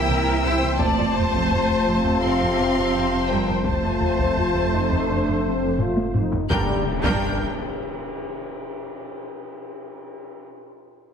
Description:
cinematic, hybrid orchestral and electronic film score; 84 BPM; 4/4; straight; G minor; A4 = 444 Hz
warm symphonic violin section; melody; 0.0-7.4 s; G5 to G6; -28 LUFS; left 4 dB
rich studio violin section; second line; 0.0-7.4 s; Bb4 to G5; -30 LUFS; left 3 dB
warm symphonic viola section; accompaniment; 0.0-7.4 s; D4 to D5; -29 LUFS; equal
clear trombone section; sustained chords; 0.0-6.8 s; C3 to C4; -31 LUFS; right 3 dB
mellow French horn section; sustained chords; 0.0-6.8 s; E3 to G4; -28 LUFS; left 2 dB
warbly tape-like pad; sustained chords; 0.0-6.9 s; E3 to A5; -29 LUFS; left 2 dB; chorus, built-in reverb
rich symphonic cello section; bass; 0.0-7.4 s; G3 to E4; -27 LUFS; right 2 dB
sub bass with octave; bass; 0.0-7.4 s; F1 to C2; -31 LUFS; equal
rich symphonic double bass section; bass; 0.1-7.4 s; C2 to G2; -29 LUFS; right 3 dB
taiko ensemble; drums; 0.8-8.4 s; -27 LUFS; equal
impact; sound effects; 6.5-9.4 s; -30 LUFS; left 1 dB
wet scoring stage reverb, RT60 1.7 s; heavily compressed radio sound; -19 LUFS; side -7 dB against mid
0.0-6.5 A section; 6.5-9.4 B section
drum fill 5.8-6.5; impact 6.5-9.4
0.0 C7; 0.8 F; 6.5 Gm
0.08 | 0.80 1.51 2.22 2.94 | 3.65 4.37 5.08 5.80 | 6.51 7.22 7.94 8.65

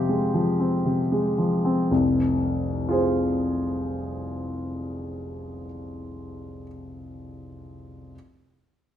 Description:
classical, romantic character piece for solo piano; 60 BPM; 4/4; rubato; F minor; A4 = 439 Hz
warm grand piano; solo; 0.0-8.2 s; F1 to C5; -24 LUFS; left 1 dB
wet stone room reverb, RT60 1.1 s; -22 LUFS; side -10 dB against mid
0.0-1.9 A section; 1.9-5.9 B section
slowing down 0.0-1.9
0.0 Fm
0.85 | 1.91 2.90 3.89 4.86

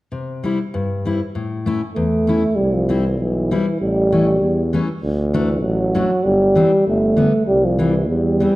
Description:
alpine folk; 98 BPM; 2/4; straight; C major; A4 = 440 Hz
fingerpicked steel-string acoustic guitar; accompaniment; 0.1-8.6 s; E2 to E4; -21 LUFS; left 2 dB
mellow euphonium; melody; 1.9-8.6 s; E3 to A3; -17 LUFS; right 1 dB
warm tuba; bass; 2.6-8.5 s; G1 to E2; -20 LUFS; equal
moderate recital hall reverb, RT60 1.5 s; -15 LUFS; side -18 dB against mid
0.1-2.6 A section; 2.6-8.6 B section
0.1 C; 1.4 A; 2.6 C; 3.8 A7; 5.0 D; 6.3 C/G; 6.9 G; 7.5 C
| 0.12 0.74 | 1.36 1.97 | 2.59 3.20 | 3.82 4.43 | 5.04 5.65 | 6.26 6.87 | 7.49 8.10

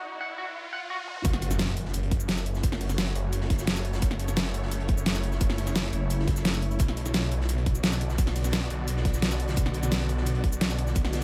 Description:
dark technical drum and bass; 173 BPM; 4/4; straight; F# minor; A4 = 440 Hz
riser and impact; sound effects; 0.0-2.6 s; -38 LUFS; equal
electric guitar at the edge of break-up; arpeggios; 0.2-1.0 s; F#4 to F#5; -37 LUFS; equal; lush chorus, sidechain pumping, tape echo
dubstep drum kit; drums; 1.1-11.2 s; hi-hat, shaker, snare drum, toms; -32 LUFS; equal; overdrive, high-pass filter on snare, studio reverb, high-pass filter on hats, high-pass filter on toms, high-pass filter on perc
swarming drone; sustained chords; 2.0-11.2 s; C#3 to D5; -38 LUFS; equal; built-in reverb, sidechain pumping
snarling distorted saw bass; bass; 1.2-11.2 s; F#1 to B1; -31 LUFS; equal; tube saturation, sidechain pumping
electronic kick drum; drums; 1.2-11.0 s; -28 LUFS; equal; high-pass filter on kick, studio reverb
crunchy breakbeat drum kit; drums; 1.3-11.2 s; hi-hat, snare drum; -43 LUFS; equal
growling FM bass; bass; 5.9-6.8 s; F#1; -30 LUFS; equal
little or no reverb; high-pass filter; -27 LUFS; mono
0.0-1.2 A section; 1.2-11.2 B section
break 0.0-1.2; build-up 0.0-1.2; riser 0.0-1.2; drum fill 1.1; drop 1.2-11.2; impact 1.2-2.6
0.0 N.C.; 1.2 F#m; 6.8 Bm
0.21 0.55 0.90 | 1.25 1.59 1.94 2.29 | 2.63 2.98 3.33 3.67 | 4.02 4.37 4.71 5.06 | 5.41 5.76 6.10 6.45 | 6.80 7.14 7.49 7.84 | 8.18 8.53 8.88 9.22 | 9.57 9.92 10.26 10.61 | 10.96

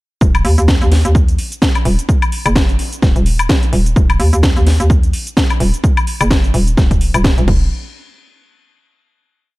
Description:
bass house; 128 BPM; 4/4; swing 57% on 16ths; Eb minor; A4 = 440 Hz
hollow knocking FM bass; bass; 0.2-7.7 s; Eb1 to Eb2; -13 LUFS; equal; overdrive, sidechain pumping
electronic kick drum; drums; 0.2-7.6 s; -14 LUFS; equal; overdrive
house drum kit; drums; 0.2-7.6 s; crash cymbal, hi-hat, shaker, snare drum, woodblock; -19 LUFS; left 1 dB; overdrive
little or no reverb; dark, warm production; -11 LUFS; side -20 dB against mid
0.2-7.7 drop; 7.7-9.6 final hit
drop 0.2-7.7
| 0.21 0.68 1.15 1.62 | 2.09 2.56 3.02 3.49 | 3.96 4.43 4.90 5.37 | 5.84 6.31 6.78 7.24

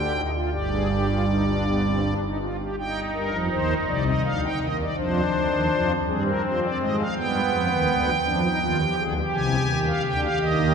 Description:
classical, baroque-style 3-part fugue for pipe organ; 55 BPM (dotted quarters); 12/8; straight; C minor; A4 = 443 Hz
pipe organ, strings celeste; solo; 0.0-10.7 s; G1 to Ab5; -21 LUFS; equal
wet cathedral reverb, RT60 5.0 s; heard from further back in the room; -21 LUFS; side -6 dB against mid
0.0-2.8 A section; 2.8-10.7 B section
0.0 G5/D; 0.5 G5; 2.8 Cm; 5.0 Ddim; 7.2 G7; 9.3 Cm
0.53 1.66 | 2.78 3.88 4.98 6.08 | 7.17 8.25 9.34 10.41

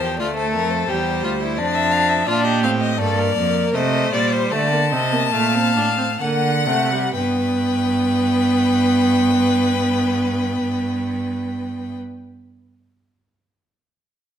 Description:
classical, baroque-style fugue for string quartet; 61-87 BPM; 3/4; straight; A4 = 440 Hz
clear violin; melody; 0.0-12.0 s; Bb4 to A5; -24 LUFS; left 10 dB
rich violin; second line; 0.0-12.0 s; D4 to F#5; -23 LUFS; left 3 dB
rich viola; accompaniment; 0.0-12.0 s; F3 to D4; -21 LUFS; right 2 dB
rich cello; bass; 0.0-12.0 s; D2 to D3; -23 LUFS; right 4 dB
moderate recital hall reverb, RT60 1.3 s; -17 LUFS; side -9 dB against mid
0.0-7.1 A section; 7.1-13.0 B section
slowing down 1.2-7.1
0.2 Dm; 1.6 Dm/F; 2.3 Bb; 3.7 Cm; 4.5 D5; 6.2 D7; 7.1 G
| 0.20 0.89 1.58 | 2.28 3.00 3.74 | 4.51 5.33 6.20 | 7.14 8.12 9.10 | 10.08 11.06

